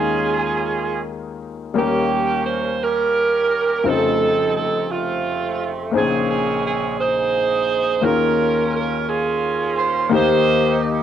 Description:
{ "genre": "gospel", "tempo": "57 BPM (dotted quarters)", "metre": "6/8", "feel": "straight", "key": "unclear", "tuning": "A4 = 440 Hz", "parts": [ { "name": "edgy saxophone section", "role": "melody", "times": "0.0-11.0 s", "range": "A3 to C5", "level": "-19 LUFS", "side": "right 5 dB", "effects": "cassette tape, plate reverb" }, { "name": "clear grand piano", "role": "accompaniment", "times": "0.0-11.0 s", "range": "F1 to C5", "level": "-22 LUFS", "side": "left 7 dB", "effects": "cassette tape" } ], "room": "wet studio ambience, RT60 0.5 s", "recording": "home recording on cassette", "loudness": "-17 LUFS", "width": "side -9 dB against mid", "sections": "0.0-10.1 A section", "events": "none", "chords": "0.0 Eb9sus4; 1.8 Eb7; 3.8 F7b13; 5.9 Bbm11; 8.0 Eb9sus4; 10.1 Eb" }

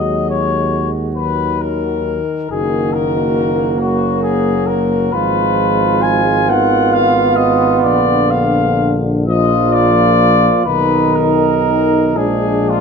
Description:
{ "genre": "classical, hymn-like piece for brass band", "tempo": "37-46 BPM (dotted quarters)", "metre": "6/8", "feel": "rubato", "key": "Eb minor", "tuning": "A4 = 441 Hz", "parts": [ { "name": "mellow cornet", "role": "melody", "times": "0.0-12.8 s", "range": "F4 to Ab5", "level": "-17 LUFS", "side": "left 8 dB", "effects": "none" }, { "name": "mellow flugelhorn", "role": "second line", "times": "0.0-12.8 s", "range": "D4 to Gb4", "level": "-19 LUFS", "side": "right 12 dB", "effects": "none" }, { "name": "mellow euphonium", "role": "accompaniment", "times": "0.0-12.8 s", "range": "D3 to Ab3", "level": "-21 LUFS", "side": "left 3 dB", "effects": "none" }, { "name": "warm trombone", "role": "accompaniment", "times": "0.0-12.8 s", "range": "D#3 to Cb4", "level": "-20 LUFS", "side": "right 4 dB", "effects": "none" }, { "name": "mellow tuba", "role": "bass", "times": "0.0-12.8 s", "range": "Gb1 to Eb2", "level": "-19 LUFS", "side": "equal", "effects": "none" } ], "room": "moderate recital hall reverb, RT60 1.8 s", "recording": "close, detailed microphones", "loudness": "-12 LUFS", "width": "side -6 dB against mid", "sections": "0.0-12.8 A section", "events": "none", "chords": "0.0 Ebm; 2.5 Ebm/Gb; 5.1 Fm7b5/Ab; 7.9 Bb; 10.7 B; 12.2 Bb7" }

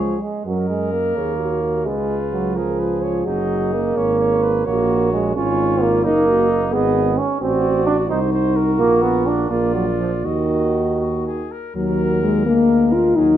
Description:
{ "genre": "classical, brass quintet", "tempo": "86 BPM (dotted quarters)", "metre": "6/8", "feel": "rubato", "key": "F# major, Eb minor from 6.1 s", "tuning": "A4 = 440 Hz", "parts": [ { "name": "mellow trumpet", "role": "melody", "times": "0.0-13.3 s", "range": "C#4 to C#5", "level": "-31 LUFS", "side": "left 8 dB", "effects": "none" }, { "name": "warm flugelhorn", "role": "second line", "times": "0.0-13.4 s", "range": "G#4 to Eb5", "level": "-28 LUFS", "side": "right 8 dB", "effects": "none" }, { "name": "clear trombone", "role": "accompaniment", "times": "0.0-13.4 s", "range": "Eb3 to Eb4", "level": "-20 LUFS", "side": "right 3 dB", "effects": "none" }, { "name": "mellow French horn", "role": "accompaniment", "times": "0.0-13.4 s", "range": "Gb3 to Bb4", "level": "-20 LUFS", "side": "left 3 dB", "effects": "none" }, { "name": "warm tuba", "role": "bass", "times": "0.0-13.4 s", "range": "F#1 to F#2", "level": "-23 LUFS", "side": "right 3 dB", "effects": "none" } ], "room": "moderate recital hall reverb, RT60 1.4 s", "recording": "dark, warm production", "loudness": "-16 LUFS", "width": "side -11 dB against mid", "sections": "0.5-11.8 A section; 11.8-13.4 B section", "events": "none", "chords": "0.5 F#; 1.9 C#7; 3.3 F#; 4.7 F#/A#; 6.1 Ebm/Gb; 6.7 Abmadd11; 7.4 Adim7; 8.8 Bb5; 9.5 Bb; 10.2 Ebm; 12.5 Bb7/D" }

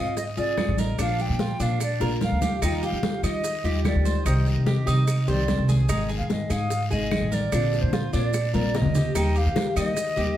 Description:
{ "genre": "latin, Cuban son and guajira", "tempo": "147 BPM", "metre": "4/4", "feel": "straight", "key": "Eb major", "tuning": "A4 = 442 Hz", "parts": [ { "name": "concert flute", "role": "melody", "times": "0.0-10.4 s", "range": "C5 to G5", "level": "-30 LUFS", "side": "equal", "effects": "plate reverb" }, { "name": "nylon-string guitar", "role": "accompaniment", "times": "0.0-10.4 s", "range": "C3 to Ab4", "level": "-29 LUFS", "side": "left 2 dB", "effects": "none" }, { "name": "Cuban tres", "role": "arpeggios", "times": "0.0-10.4 s", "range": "D4 to Eb5", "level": "-32 LUFS", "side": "right 2 dB", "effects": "none" }, { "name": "upright bass", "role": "bass", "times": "0.0-10.4 s", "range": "Ab1 to Eb3", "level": "-25 LUFS", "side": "equal", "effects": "none" }, { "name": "bongos", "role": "percussion", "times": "0.2-10.2 s", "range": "none", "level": "-36 LUFS", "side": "left 3 dB", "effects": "none" }, { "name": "congas", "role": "percussion", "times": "0.2-10.4 s", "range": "none", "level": "-30 LUFS", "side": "equal", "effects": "none" }, { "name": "guiro", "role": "percussion", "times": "0.2-10.4 s", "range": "none", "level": "-41 LUFS", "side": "left 3 dB", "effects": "none" }, { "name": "maracas", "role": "percussion", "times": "0.2-10.4 s", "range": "none", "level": "-40 LUFS", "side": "right 6 dB", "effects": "none" }, { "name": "claves", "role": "percussion", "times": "0.6-10.0 s", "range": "none", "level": "-40 LUFS", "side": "right 2 dB", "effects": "none" } ], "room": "wet studio reverb, RT60 0.9 s", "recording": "heard from further back in the room", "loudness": "-21 LUFS", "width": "side -12 dB against mid", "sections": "0.0-9.2 A section; 9.2-10.4 A section", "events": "drum fill 2.0-2.6, 8.5-9.2", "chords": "0.0 Ab6; 1.0 Bb; 2.6 Ebadd9; 4.3 Cm; 5.9 Absus2; 7.5 Bbadd9; 9.2 Eb" }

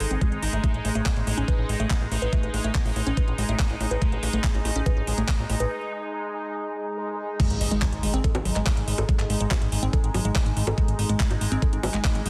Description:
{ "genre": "psychedelic trance", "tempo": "142 BPM", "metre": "4/4", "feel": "straight", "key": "unclear", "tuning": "A4 = 440 Hz", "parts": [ { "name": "bubbling stepped-filter texture", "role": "sustained chords", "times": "0.0-12.3 s", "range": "G#3 to D#4", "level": "-34 LUFS", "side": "equal", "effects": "chorus, built-in reverb, sidechain pumping" }, { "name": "woody wave-folded pluck", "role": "riff", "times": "0.0-12.3 s", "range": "F#3 to B4", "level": "-33 LUFS", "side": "equal", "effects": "chorus, sidechain pumping, digital delay" }, { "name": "fat analog bass", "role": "bass", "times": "0.0-12.3 s", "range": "G#1 to A1", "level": "-29 LUFS", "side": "equal", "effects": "none" }, { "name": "garage drum kit", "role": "drums", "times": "0.0-12.3 s", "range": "bongos, crash cymbal, handclaps, hi-hat", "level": "-33 LUFS", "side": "equal", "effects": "studio reverb" }, { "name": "electronic kick drum", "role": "drums", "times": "0.2-12.1 s", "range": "none", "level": "-26 LUFS", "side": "equal", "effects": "studio reverb" }, { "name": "impact", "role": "sound effects", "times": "7.4-9.1 s", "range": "none", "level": "-36 LUFS", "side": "equal", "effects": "none" } ], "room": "light reverb, digital ambience", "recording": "dense, heavily limited modern master", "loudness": "-25 LUFS", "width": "mono", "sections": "0.0-7.4 A section; 7.4-12.3 B section", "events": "break 5.7-7.4; drop 7.4-12.3; impact 7.4-9.1", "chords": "0.0 G#5; 0.6 Amaj7(b5, no3); 7.4 G#5" }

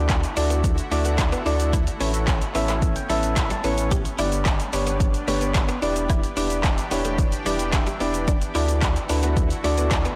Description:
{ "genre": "dance-pop", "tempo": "110 BPM", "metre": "4/4", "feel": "straight", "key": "unclear", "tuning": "A4 = 440 Hz", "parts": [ { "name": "soft electric-piano-like synth keys", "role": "accompaniment", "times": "0.0-10.0 s", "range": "B3 to C#6", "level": "-28 LUFS", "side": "equal", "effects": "chorus, sidechain pumping" }, { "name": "shimmering ambient pad", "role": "sustained chords", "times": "0.0-10.2 s", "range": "D3 to G4", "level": "-35 LUFS", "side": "equal", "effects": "chorus, built-in reverb, sidechain pumping" }, { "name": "warm sub bass", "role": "bass", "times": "0.0-10.1 s", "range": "E1 to D2", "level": "-28 LUFS", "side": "equal", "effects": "sidechain pumping" }, { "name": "direct-recorded clean electric guitar", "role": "riff", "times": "0.1-10.2 s", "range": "G3 to G4", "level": "-34 LUFS", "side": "equal", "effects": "ensemble chorus" }, { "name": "deep house drum kit", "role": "drums", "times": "0.1-10.2 s", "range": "handclaps, hi-hat, kick drum, shaker, snare drum", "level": "-26 LUFS", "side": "equal", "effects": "none" }, { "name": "group handclap", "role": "percussion", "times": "0.1-10.0 s", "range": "none", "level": "-41 LUFS", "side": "equal", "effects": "none" } ], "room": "light reverb, digital ambience", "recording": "blown-out, overdriven recording, overdrive", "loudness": "-22 LUFS", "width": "mono", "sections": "0.0-10.2 A section", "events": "synth keys fill 2.3-3.9, 7.5-8.3", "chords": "0.0 Dadd9; 1.7 Aadd9; 3.9 G; 5.8 Em7; 8.3 Dadd9" }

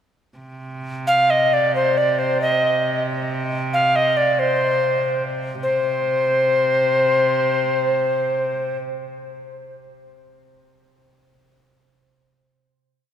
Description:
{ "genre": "medieval dance", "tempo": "89-102 BPM (dotted quarters)", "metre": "6/8", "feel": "straight", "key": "C minor", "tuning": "A4 = 440 Hz", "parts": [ { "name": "rich viola da gamba", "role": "drone", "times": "0.4-8.8 s", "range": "C3", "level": "-27 LUFS", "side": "right 2 dB", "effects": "none" }, { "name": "alto recorder", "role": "melody", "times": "1.1-8.8 s", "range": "C5 to F5", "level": "-18 LUFS", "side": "equal", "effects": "none" } ], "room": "wet church reverb, RT60 3.8 s", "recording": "none", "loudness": "-17 LUFS", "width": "side -9 dB against mid", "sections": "0.4-5.6 A section; 5.6-8.1 final note", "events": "speeding up 0.4-8.1", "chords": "none" }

